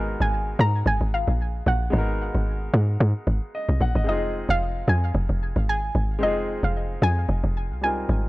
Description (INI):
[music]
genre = amapiano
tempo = 112 BPM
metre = 4/4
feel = swing 55% on 16ths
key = unclear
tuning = A4 = 440 Hz
[part]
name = soft round pluck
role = melody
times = 0.0-8.3 s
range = Eb5 to Bb5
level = -28 LUFS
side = equal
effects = chorus, tape echo
[part]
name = warm baby grand piano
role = accompaniment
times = 0.0-8.3 s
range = G3 to Gb5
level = -31 LUFS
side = equal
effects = none
[part]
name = woody log drum bass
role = bass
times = 0.0-8.3 s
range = F1 to Ab2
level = -22 LUFS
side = equal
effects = none
[sound]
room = studio reverb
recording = dry, gritty hardware recording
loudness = -21 LUFS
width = side -19 dB against mid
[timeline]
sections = 0.0-8.3 A section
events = none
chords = 0.0 Abm9; 4.1 Fm7